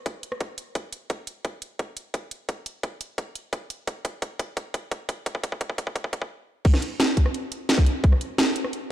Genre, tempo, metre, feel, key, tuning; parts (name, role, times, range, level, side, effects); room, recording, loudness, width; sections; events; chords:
drum and bass; 173 BPM; 4/4; straight
drum and bass drum kit; drums; 0.1-8.8 s; crash cymbal, hi-hat, rim click, snare drum; -26 LUFS; right 1 dB; overdrive, studio reverb
electronic kick drum; drums; 0.1-8.1 s; -22 LUFS; equal; overdrive, high-pass filter on kick, studio reverb
moderate lush hall reverb, RT60 1.8 s; dark, warm production; -25 LUFS; side -12 dB against mid
0.0-6.6 A section; 6.6-8.9 B section
build-up 0.0-6.6; drum fill 1.1-6.3; stop 6.3-6.6; drop 6.6-8.9